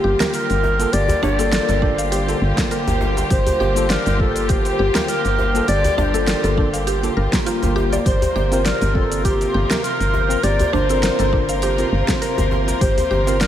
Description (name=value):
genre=organic downtempo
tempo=101 BPM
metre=4/4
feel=swing 55% on 16ths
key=G minor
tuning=A4 = 440 Hz
part: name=mellow clarinet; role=melody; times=0.0-13.5 s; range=G4 to D5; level=-22 LUFS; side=equal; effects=diffuse ambient delay
part: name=tine electric piano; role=accompaniment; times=0.0-13.4 s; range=Bb3 to C5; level=-26 LUFS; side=left 1 dB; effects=medium stereo tremolo, sidechain pumping, diffuse ambient delay
part: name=warm studio string section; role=sustained chords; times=0.0-13.5 s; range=C3 to Bb4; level=-26 LUFS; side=equal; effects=sidechain pumping
part: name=mallet-like synth pluck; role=arpeggios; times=0.0-13.5 s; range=D4 to F5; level=-26 LUFS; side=equal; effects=chorus, vintage 12-bit sampler grit, diffuse ambient delay
part: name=woody FM bass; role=bass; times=0.0-13.5 s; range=G1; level=-21 LUFS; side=equal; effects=sidechain pumping
part: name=twinkling granular texture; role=texture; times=0.0-13.5 s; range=C5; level=-30 LUFS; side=right 2 dB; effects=built-in reverb, ensemble chorus
part: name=deep house drum kit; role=drums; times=0.2-13.5 s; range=hi-hat, shaker, snare drum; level=-25 LUFS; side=equal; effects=overdrive, studio reverb
part: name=djembe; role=percussion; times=0.2-13.4 s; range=none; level=-27 LUFS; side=left 1 dB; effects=none
part: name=electronic kick drum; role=drums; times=1.8-12.9 s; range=none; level=-21 LUFS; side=equal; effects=studio reverb
room=moderate lush hall reverb, RT60 2.4 s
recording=dreamy mix soaked in reverb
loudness=-16 LUFS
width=side -11 dB against mid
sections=0.0-13.5 A section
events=none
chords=0.0 Gm7; 8.1 Bbsus2/G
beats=0.34 | 0.93 1.52 2.12 2.71 | 3.31 3.90 4.50 5.09 | 5.68 6.28 6.87 7.47 | 8.06 8.65 9.25 9.84 | 10.44 11.03 11.62 12.22 | 12.81 13.41